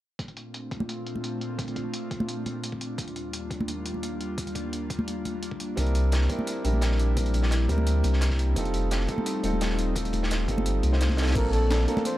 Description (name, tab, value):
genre	liquid drum and bass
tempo	172 BPM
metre	4/4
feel	straight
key	Bb major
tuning	A4 = 440 Hz
part	airy breathy pad	sustained chords	0.3-12.2 s	Eb2 to D5	-33 LUFS	left 1 dB	chorus, sidechain pumping
part	breakbeat sampler-style drum kit	drums	0.2-12.1 s	crash cymbal, hi-hat, snare drum	-37 LUFS	equal	low-pass filter on hats, small room reverb, low-pass filter on cymbals, low-pass filter on snare
part	electronic kick drum	drums	0.2-11.4 s	none	-35 LUFS	equal	high-pass filter on kick, small room reverb
part	congas	percussion	0.8-12.1 s	none	-33 LUFS	equal	none
part	dark grand piano	accompaniment	5.8-12.2 s	G3 to C5	-30 LUFS	right 1 dB	vintage 12-bit sampler grit, digital delay
part	sub bass with octave	bass	5.8-11.9 s	Eb1 to D2	-24 LUFS	equal	none
part	crunchy breakbeat drum kit	drums	5.8-12.1 s	hi-hat, snare drum	-35 LUFS	equal	high-pass filter on hats, small room reverb, high-pass filter on snare, high-pass filter on room
part	breathy flugelhorn	melody	11.4-12.2 s	A4 to C5	-29 LUFS	equal	none
room	light reverb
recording	dark, warm production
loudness	-24 LUFS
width	side -15 dB against mid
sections	0.2-11.4 A section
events	none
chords	0.2 Bbmaj9; 3.0 Ebmaj9; 5.8 C9; 8.6 F9; 11.4 Bbmaj9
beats	| 0.19 0.54 0.89 1.24 | 1.59 1.94 2.29 2.63 | 2.98 3.33 3.68 4.03 | 4.38 4.73 5.08 5.42 | 5.77 6.12 6.47 6.82 | 7.17 7.52 7.87 8.22 | 8.56 8.91 9.26 9.61 | 9.96 10.31 10.66 11.01 | 11.36 11.70 12.05